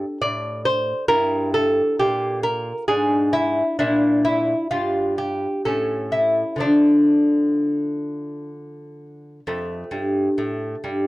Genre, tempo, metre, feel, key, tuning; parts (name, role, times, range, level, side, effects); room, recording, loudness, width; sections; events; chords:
classical, baroque-style dance for lute; 65 BPM; 3/4; uneven beats, rubato; D minor; A4 = 440 Hz
lute; solo; 0.0-11.1 s; F2 to D5; -19 LUFS; equal
moderate booth ambience, RT60 0.2 s; dry, close 1970s-style studio recording; -18 LUFS; side -18 dB against mid
0.0-9.5 A section; 9.5-11.1 A section
0.0 D5; 1.1 Edim/G; 2.9 E7/G#; 3.8 Edim/Bb; 5.6 A; 6.6 Dm; 9.5 F